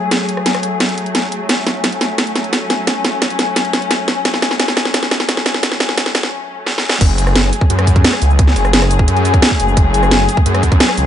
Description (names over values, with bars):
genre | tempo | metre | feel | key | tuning
dark technical drum and bass | 174 BPM | 4/4 | straight | F# minor | A4 = 440 Hz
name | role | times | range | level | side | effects
muted studio string section | sustained chords | 0.0-11.1 s | F#3 to G#4 | -19 LUFS | left 3 dB | sidechain pumping, low-pass filter
drum and bass drum kit | drums | 0.1-11.0 s | crash cymbal, hi-hat, rim click, shaker, snare drum | -15 LUFS | right 1 dB | overdrive
wide detuned saw bass | bass | 7.0-11.1 s | F#1 to F#2 | -14 LUFS | equal | chorus, overdrive, sidechain pumping
electronic kick drum | drums | 7.0-10.8 s | none | -12 LUFS | equal | overdrive
room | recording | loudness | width
light reverb | high-pass filter, nothing above 10.4 kHz | -12 LUFS | side -10 dB against mid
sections
0.0-7.0 A section; 7.0-11.1 B section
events
build-up 0.0-7.0; drum fill 0.0-6.3, 6.7-7.0; break 6.3-7.0; drop 7.0-11.1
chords
0.0 F#madd9